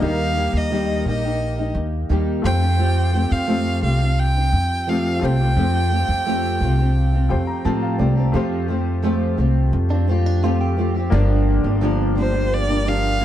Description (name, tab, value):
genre	pop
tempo	86 BPM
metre	4/4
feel	straight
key	unclear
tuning	A4 = 440 Hz
part	rich violin	melody	0.0-7.7, 12.2-13.2 s	C5 to G5	-24 LUFS	right 1 dB	plate reverb
part	bright upright piano	accompaniment	0.0-13.2 s	A3 to Bb5	-30 LUFS	left 3 dB	plate reverb
part	fingerpicked steel-string acoustic guitar	accompaniment	0.0-13.2 s	G2 to G4	-23 LUFS	equal	double-tracked left and right, plate reverb
part	upright bass	bass	0.0-13.2 s	G1 to A2	-20 LUFS	equal	none
part	direct-recorded clean electric guitar	second line	9.9-11.1 s	C4 to G4	-28 LUFS	right 4 dB	analog chorus, plate reverb
room	moderate studio reverb, RT60 0.7 s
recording	dark, warm production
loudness	-17 LUFS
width	side -11 dB against mid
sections	0.0-8.3 A section; 8.3-11.1 B section; 11.1-13.2 C section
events	upright piano fill 7.0-8.3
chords	0.0 Eb; 2.4 Fadd9; 11.1 Gm7